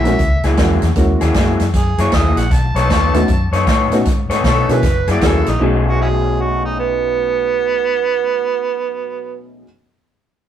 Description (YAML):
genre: electric blues shuffle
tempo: 155 BPM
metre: 4/4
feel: swing 64% on 8ths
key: B mixolydian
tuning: A4 = 440 Hz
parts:
  - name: overdriven harmonica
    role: melody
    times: 0.0-9.5 s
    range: B3 to A5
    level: -19 LUFS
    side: right 6 dB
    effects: none
  - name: honky-tonk upright piano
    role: accompaniment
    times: 0.0-9.6 s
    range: B2 to G#4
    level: -21 LUFS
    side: equal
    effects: none
  - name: electric guitar through a small old amp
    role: riff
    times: 0.0-9.7 s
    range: B2 to C#5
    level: -21 LUFS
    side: left 3 dB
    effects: spring reverb
  - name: vintage muted fingered electric bass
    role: bass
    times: 0.0-9.6 s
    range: F#1 to B2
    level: -18 LUFS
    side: left 1 dB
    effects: none
  - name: swinging big-band drum kit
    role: drums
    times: 0.1-5.5 s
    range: hi-hat, kick drum, snare drum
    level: -18 LUFS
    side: equal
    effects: none
room: light reverb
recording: rough rehearsal-room recording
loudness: -13 LUFS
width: side -10 dB against mid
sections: 0.0-5.6 A section; 5.6-8.7 B section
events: none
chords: 0.0 F#9; 2.5 B9; 4.8 F#9; 5.6 B13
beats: 0.20 0.58 | 0.97 1.36 1.74 2.13 | 2.52 2.90 3.29 3.67 | 4.06 4.45 4.83 5.22 | 5.61 5.99 6.38 6.76 | 7.15 7.54 7.92 8.31